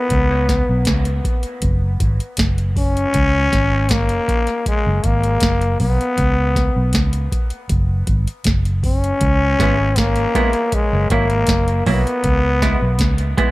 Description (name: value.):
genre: dub reggae.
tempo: 79 BPM.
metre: 4/4.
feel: straight.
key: unclear.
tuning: A4 = 440 Hz.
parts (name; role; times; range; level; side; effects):
growling trombone; melody; 0.0-13.3 s; G#3 to C#4; -20 LUFS; left 2 dB; dub echo.
vintage muted fingered electric bass; bass; 0.1-13.3 s; F#1 to C#2; -18 LUFS; equal; none.
booming analog drum machine; drums; 0.1-13.5 s; hi-hat, kick drum, snare drum; -19 LUFS; equal; none.
semi-hollow electric guitar; accompaniment; 9.6-13.5 s; F#3 to E4; -24 LUFS; right 4 dB; dub echo.
room: light reverb.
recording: faint mains hum.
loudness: -15 LUFS.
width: side -19 dB against mid.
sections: 0.0-13.5 A section.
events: none.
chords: 0.1 Bsus2; 1.6 F#5; 3.1 C#5; 4.7 F#; 6.2 Bsus2; 7.7 F#5; 9.2 C#m7; 10.7 F#7; 12.2 C#m7.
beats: | 0.11 0.87 1.63 2.38 | 3.14 3.90 4.66 5.42 | 6.18 6.93 7.69 8.45 | 9.21 9.96 10.72 11.48 | 12.24 12.99.